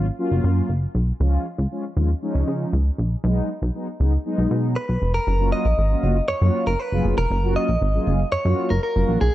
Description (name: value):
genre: dance-pop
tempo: 118 BPM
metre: 4/4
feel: straight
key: F# major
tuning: A4 = 440 Hz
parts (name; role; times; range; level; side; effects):
- mellow synth brass; accompaniment; 0.0-9.2 s; E#3 to G#4; -26 LUFS; equal; chorus
- plucky analog bass; bass; 0.0-9.3 s; E#1 to C#3; -20 LUFS; equal; none
- direct-recorded clean electric guitar; melody; 4.8-9.3 s; G#4 to D#5; -24 LUFS; equal; digital delay
room: light reverb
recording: dark, warm production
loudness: -19 LUFS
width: side -14 dB against mid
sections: 0.0-5.3 A section; 5.3-9.3 B section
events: none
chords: 0.0 F#maj7; 1.2 C#; 3.2 B6; 5.3 F#maj7